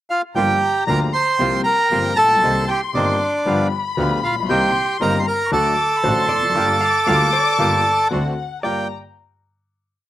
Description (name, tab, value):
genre	tango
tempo	116 BPM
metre	4/4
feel	rubato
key	G minor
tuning	A4 = 439 Hz
part	bandoneon	melody	0.1-8.9 s	D4 to C6	-17 LUFS	right 2 dB	slapback echo
part	dark chamber violin section	second line	0.3-8.9 s	F#5 to D6	-26 LUFS	left 7 dB	slapback echo
part	warm concert grand piano	accompaniment	0.4-8.9 s	G1 to G4	-24 LUFS	left 3 dB	none
part	bandoneon	stabs	0.4-8.9 s	G3 to G4	-27 LUFS	right 3 dB	none
part	warm double bass	bass	0.4-8.9 s	F1 to D2	-25 LUFS	right 1 dB	none
part	hollow-body jazz guitar	second line	6.0-8.9 s	C5 to F5	-28 LUFS	right 1 dB	slapback echo
room	little or no reverb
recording	recorded outdoors, with no room sound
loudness	-16 LUFS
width	side -13 dB against mid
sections	0.0-0.3 pickup bar; 0.3-8.6 A section; 8.6-10.1 final chord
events	none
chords	0.3 Gm7; 1.4 C7sus4; 2.4 Cm7; 3.5 G7; 4.5 Cm7; 5.5 D; 6.6 Gm7; 8.1 D7; 8.6 Gm7